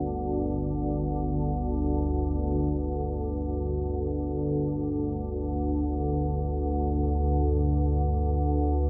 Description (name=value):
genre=dark ambient drone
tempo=free time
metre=none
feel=none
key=unclear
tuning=A4 = 440 Hz
part: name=organ-like drone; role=solo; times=0.0-8.9 s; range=G1 to D2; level=-28 LUFS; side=equal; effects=ensemble chorus, built-in reverb, delay
room=wet cathedral reverb, RT60 5.7 s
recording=none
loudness=-28 LUFS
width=mono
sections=0.0-2.6 A section; 2.6-8.9 B section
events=none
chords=0.0 G5